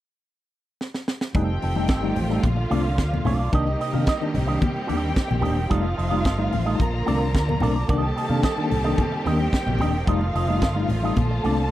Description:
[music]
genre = disco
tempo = 110 BPM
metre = 4/4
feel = straight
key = C dorian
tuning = A4 = 441 Hz
[part]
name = tight funk drum kit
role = drums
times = 0.8-11.6 s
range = hi-hat, kick drum, snare drum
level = -23 LUFS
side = equal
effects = none
[part]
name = bright tine electric piano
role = accompaniment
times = 1.3-11.6 s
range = Bb2 to Eb4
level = -27 LUFS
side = left 2 dB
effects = medium stereo tremolo
[part]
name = clear studio string section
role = sustained chords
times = 1.3-11.7 s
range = D3 to G4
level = -31 LUFS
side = right 1 dB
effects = none
[part]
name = dark studio string section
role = second line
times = 1.4-11.7 s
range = Eb4 to Bb5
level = -29 LUFS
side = equal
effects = none
[part]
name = electric guitar with an envelope filter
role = accompaniment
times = 1.4-11.6 s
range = C4 to F5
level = -31 LUFS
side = right 4 dB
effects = spring reverb
[part]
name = fingered electric bass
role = bass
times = 1.4-11.7 s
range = Eb1 to C3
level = -25 LUFS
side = equal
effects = none
[part]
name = congas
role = percussion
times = 1.4-11.6 s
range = none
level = -30 LUFS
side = left 3 dB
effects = none
[sound]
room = small room ambience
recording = dry, close 1970s-style studio recording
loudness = -20 LUFS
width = side -14 dB against mid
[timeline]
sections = 0.0-1.3 A section; 1.3-11.7 B section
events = drum fill 0.8-1.3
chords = 0.0 N.C.; 1.3 F7; 2.4 Bbmaj7; 3.5 Cm7; 5.7 F7; 6.8 Bbmaj7; 7.9 Cm7; 10.1 F7; 11.2 Bbmaj7

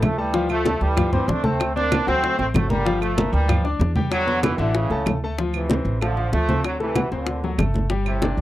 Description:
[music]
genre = latin, salsa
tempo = 190 BPM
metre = 4/4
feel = straight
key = D minor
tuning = A4 = 440 Hz
[part]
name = bright trombone section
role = melody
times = 0.0-8.4 s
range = A2 to D4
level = -24 LUFS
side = right 2 dB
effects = none
[part]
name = bright concert grand piano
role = accompaniment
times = 0.0-8.4 s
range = E3 to D6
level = -26 LUFS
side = left 4 dB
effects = none
[part]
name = upright bass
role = bass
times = 0.0-8.4 s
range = G1 to E2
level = -24 LUFS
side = equal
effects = none
[part]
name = bongos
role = percussion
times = 0.0-8.4 s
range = none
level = -27 LUFS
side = left 3 dB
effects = none
[part]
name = claves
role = percussion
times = 0.0-8.2 s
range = none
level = -34 LUFS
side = right 13 dB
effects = none
[part]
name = congas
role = percussion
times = 0.0-8.4 s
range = none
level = -25 LUFS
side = right 1 dB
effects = none
[sound]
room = light reverb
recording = dry, close 1970s-style studio recording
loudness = -19 LUFS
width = side -14 dB against mid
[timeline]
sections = 0.0-5.4 A section; 5.4-8.4 B section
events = none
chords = 0.3 Dm11; 1.6 D7; 2.9 Gm9; 4.1 Em9; 4.7 A; 5.4 Dm9; 6.6 D7; 7.9 G5

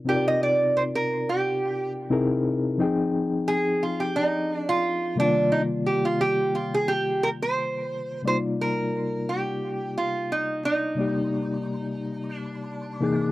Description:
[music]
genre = R&B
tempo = 88 BPM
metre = 4/4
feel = swing 56% on 16ths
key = C minor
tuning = A4 = 438 Hz
[part]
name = reed electric piano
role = accompaniment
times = 0.0-13.3 s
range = C3 to G5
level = -26 LUFS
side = left 2 dB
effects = fast tremolo
[part]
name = lap resonator guitar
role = melody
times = 0.1-13.3 s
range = D4 to Eb5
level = -25 LUFS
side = right 2 dB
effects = none
[sound]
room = light reverb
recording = dry, close 1970s-style studio recording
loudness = -23 LUFS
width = side -17 dB against mid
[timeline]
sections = 0.0-8.2 A section; 8.2-13.3 B section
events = resonator guitar played with a steel bar solo 0.0-8.2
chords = 0.0 Cm11; 2.1 C7alt; 2.8 Fm9; 5.2 Cm11

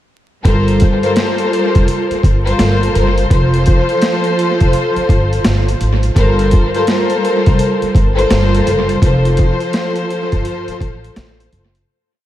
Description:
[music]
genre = hip hop, boom-bap hip-hop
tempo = 84 BPM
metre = 4/4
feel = swing 63% on 16ths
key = G minor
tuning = A4 = 441 Hz
[part]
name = warm studio string section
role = accompaniment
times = 0.4-11.7 s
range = F3 to C5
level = -15 LUFS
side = left 1 dB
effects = cassette tape, high-pass filter, low-pass filter, dub echo
[part]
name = boom bap sampler-style drum kit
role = drums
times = 0.4-11.9 s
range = hi-hat, kick drum, snare drum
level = -15 LUFS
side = equal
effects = dub echo
[part]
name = upright bass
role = bass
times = 0.5-11.8 s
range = F1 to A1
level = -16 LUFS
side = equal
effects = none
[sound]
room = small room ambience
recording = echo-heavy mix, vinyl crackle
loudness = -11 LUFS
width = side -13 dB against mid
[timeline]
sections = 0.4-11.9 verse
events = fade-out 9.0-11.9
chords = 0.4 Gm11; 3.3 Fadd9; 6.2 Gm11; 9.0 F

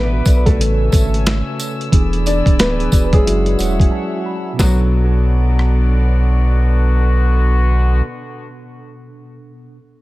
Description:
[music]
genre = hip hop, boom-bap hip-hop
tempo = 90 BPM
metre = 4/4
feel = swing 61% on 16ths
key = B dorian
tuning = A4 = 440 Hz
[part]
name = warm upright piano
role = melody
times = 0.0-6.6 s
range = F#3 to D5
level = -22 LUFS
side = left 1 dB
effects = high-pass filter, low-pass filter, analog delay
[part]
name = mellow tine electric piano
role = accompaniment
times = 0.0-9.8 s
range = B2 to B5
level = -23 LUFS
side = right 1 dB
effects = medium stereo tremolo, cassette tape, high-pass filter, low-pass filter, analog delay
[part]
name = warm studio string section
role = sustained chords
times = 0.0-8.0 s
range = B2 to E6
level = -29 LUFS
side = left 2 dB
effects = high-pass filter, low-pass filter
[part]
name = warm sub bass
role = bass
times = 0.0-8.0 s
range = D1 to B1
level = -15 LUFS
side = equal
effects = none
[part]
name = dusty soul sampler-style drum kit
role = drums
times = 0.3-5.8 s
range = hi-hat, kick drum, rim click, snare drum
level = -14 LUFS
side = equal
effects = none
[part]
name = tambourine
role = percussion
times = 0.3-4.9 s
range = none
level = -29 LUFS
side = right 5 dB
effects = none
[part]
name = mellow horn section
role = stabs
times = 4.6-8.0 s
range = D3 to F#4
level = -24 LUFS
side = left 4 dB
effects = high-pass filter, low-pass filter, analog delay
[sound]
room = studio reverb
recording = echo-heavy mix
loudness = -13 LUFS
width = side -18 dB against mid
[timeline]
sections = 0.0-4.6 A section; 4.6-7.3 B section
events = break 3.9-4.6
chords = 0.0 Bm7; 0.6 Amaj7; 1.9 E7; 3.3 F#5; 4.6 Bm7

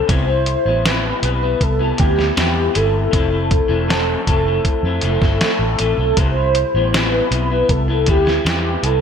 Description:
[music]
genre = indie pop, bedroom pop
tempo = 79 BPM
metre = 4/4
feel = straight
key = C major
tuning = A4 = 445 Hz
[part]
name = warm velvety synth lead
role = melody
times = 0.0-9.0 s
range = G4 to C5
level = -19 LUFS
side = equal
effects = analog chorus
[part]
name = electric guitar through a small old amp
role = accompaniment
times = 0.0-9.0 s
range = C3 to A4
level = -22 LUFS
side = left 4 dB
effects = lush chorus, vibrato effect
[part]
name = vintage muted fingered electric bass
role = bass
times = 0.1-9.0 s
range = E1 to F2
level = -20 LUFS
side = equal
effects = none
[part]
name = lo-fi sampler-style drum kit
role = drums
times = 0.1-9.0 s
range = hi-hat, kick drum, snare drum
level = -19 LUFS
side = equal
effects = gated reverb
[sound]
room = moderate plate reverb, RT60 1.6 s, digital ambience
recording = bright 1980s-style digital production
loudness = -14 LUFS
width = side -7 dB against mid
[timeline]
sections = 0.0-9.0 A section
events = none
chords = 0.1 Cmaj7; 3.1 Fmaj7; 6.2 Cmaj7

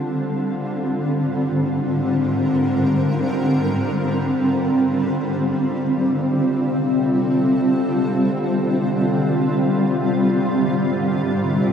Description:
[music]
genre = ambient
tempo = free time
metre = none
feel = none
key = unclear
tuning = A4 = 440 Hz
[part]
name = shimmering ambient pad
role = sustained chords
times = 0.0-11.7 s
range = Ab2 to Bb4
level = -18 LUFS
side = equal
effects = chorus, built-in reverb, shimmer reverb
[part]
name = organ-like drone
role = drone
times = 6.5-11.7 s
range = C3 to G3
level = -28 LUFS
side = equal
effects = ensemble chorus, built-in reverb
[sound]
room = wet cathedral reverb, RT60 6.0 s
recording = in a vast, echoing space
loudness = -17 LUFS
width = side -8 dB against mid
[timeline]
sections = 0.0-5.2 A section; 5.2-11.7 B section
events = none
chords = 0.5 Ab; 5.2 Csus2; 9.8 Ab

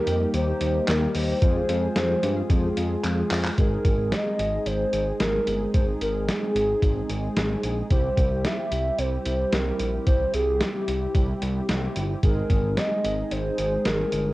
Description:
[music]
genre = synth-pop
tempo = 111 BPM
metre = 4/4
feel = straight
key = unclear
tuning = A4 = 440 Hz
[part]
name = hollow clarinet-like synth lead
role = melody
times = 0.0-14.3 s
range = G4 to E5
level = -27 LUFS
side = equal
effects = chorus, cassette tape
[part]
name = mellow synth brass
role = accompaniment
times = 0.0-14.3 s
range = G3 to Ab4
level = -29 LUFS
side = equal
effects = chorus, cassette tape
[part]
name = warbly dusty pluck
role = arpeggios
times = 0.0-3.5 s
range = Eb3 to F5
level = -35 LUFS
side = left 5 dB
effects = none
[part]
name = smooth gliding synth bass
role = bass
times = 0.1-14.3 s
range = G1 to G2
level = -28 LUFS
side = equal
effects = none
[part]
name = trip hop sampler-style drum kit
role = drums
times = 0.1-14.2 s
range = handclaps, hi-hat, kick drum, snare drum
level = -25 LUFS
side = equal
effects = cassette tape
[sound]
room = moderate booth ambience, RT60 0.3 s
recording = home recording on cassette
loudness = -22 LUFS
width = side -18 dB against mid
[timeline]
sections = 0.0-3.6 A section; 3.6-14.3 B section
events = drum fill 3.0-3.6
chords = 0.0 Eb; 1.4 Fmadd9; 3.6 Abadd9; 7.9 C; 12.2 Abadd9

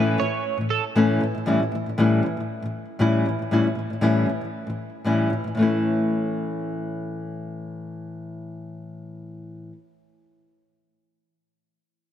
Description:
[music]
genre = acoustic pop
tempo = 117 BPM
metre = 4/4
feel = swing 55% on 16ths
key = A major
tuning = A4 = 440 Hz
[part]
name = nylon-string guitar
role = accompaniment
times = 0.0-9.8 s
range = A2 to E4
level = -22 LUFS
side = left 2 dB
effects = none
[part]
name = twelve-string electric guitar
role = arpeggios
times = 0.2-0.8 s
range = A4 to C#5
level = -28 LUFS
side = right 8 dB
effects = none
[sound]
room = moderate plate reverb, RT60 3.3 s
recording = dark, warm production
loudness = -21 LUFS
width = side -10 dB against mid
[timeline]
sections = 0.0-5.6 A section; 5.6-9.7 B section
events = none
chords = 0.0 A; 1.5 A7; 5.6 A

